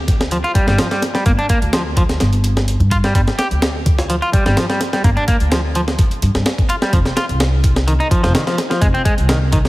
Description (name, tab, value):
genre	breakbeat, breaks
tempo	127 BPM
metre	4/4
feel	straight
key	G phrygian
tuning	A4 = 440 Hz
part	upright bass	bass	0.0-9.7 s	F1 to G2	-17 LUFS	equal	none
part	breakbeat sampler-style drum kit	drums	0.1-9.7 s	hi-hat, kick drum, snare drum	-17 LUFS	equal	small room ambience
part	electronic hi-hat	drums	0.1-9.7 s	none	-33 LUFS	left 2 dB	small room ambience
part	clean electric guitar	riff	0.3-9.6 s	Eb3 to G4	-20 LUFS	equal	dub echo
room	light reverb, digital ambience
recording	heavily compressed radio sound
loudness	-13 LUFS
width	side -19 dB against mid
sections	0.0-9.7 A section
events	none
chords	0.0 G5; 6.9 F5